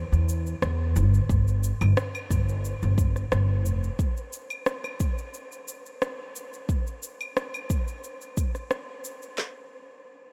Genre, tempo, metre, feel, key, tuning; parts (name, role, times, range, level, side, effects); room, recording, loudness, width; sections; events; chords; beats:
sunset chillout; 89 BPM; 4/4; straight; A4 = 439 Hz
upright bass; bass; 0.0-3.9 s; F1 to E2; -25 LUFS; equal
electronic shaker, rim click and claves; drums; 0.1-9.4 s; -36 LUFS; equal
deep house drum kit; drums; 1.3-9.5 s; handclaps, kick drum, snare drum; -28 LUFS; equal
light reverb, digital ambience; -27 LUFS; mono
0.0-9.4 A section
0.62 | 1.29 1.97 2.64 3.32 | 3.99 4.66 5.34 6.01 | 6.69 7.36 8.04 8.71 | 9.38